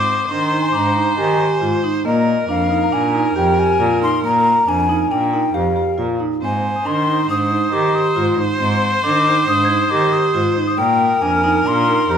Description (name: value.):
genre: contemporary instrumental, chamber music in an uneven meter.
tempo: 137 BPM.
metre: 5/4.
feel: straight.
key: unclear.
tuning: A4 = 440 Hz.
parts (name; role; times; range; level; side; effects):
mellow hollow jazz flute; melody; 0.0-12.2 s; Eb5 to Eb6; -18 LUFS; left 3 dB; none.
rich viola; second line; 0.0-12.2 s; Bb4 to C5; -23 LUFS; equal; none.
vibraphone with medium mallets; arpeggios; 0.0-12.2 s; Bb3 to G4; -20 LUFS; right 2 dB; none.
warm cello; bass; 0.0-12.2 s; F2 to Eb3; -21 LUFS; right 3 dB; none.
large celesta; texture; 0.0-12.2 s; G5 to Ab6; -28 LUFS; left 6 dB; none.
room: moderate recital hall reverb, RT60 1.7 s.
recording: minimal, uncompressed stereo recording.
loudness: -14 LUFS.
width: side -8 dB against mid.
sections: 0.0-12.2 A section.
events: none.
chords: 0.0 Abmaj7; 2.1 Bb7sus4; 6.4 Ab; 10.8 Bb7sus4.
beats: 0.31 0.74 1.18 1.62 | 2.05 2.49 2.92 3.36 3.80 | 4.23 4.67 5.11 5.54 5.98 | 6.42 6.85 7.29 7.73 8.16 | 8.60 9.04 9.47 9.91 10.35 | 10.79 11.22 11.66 12.10.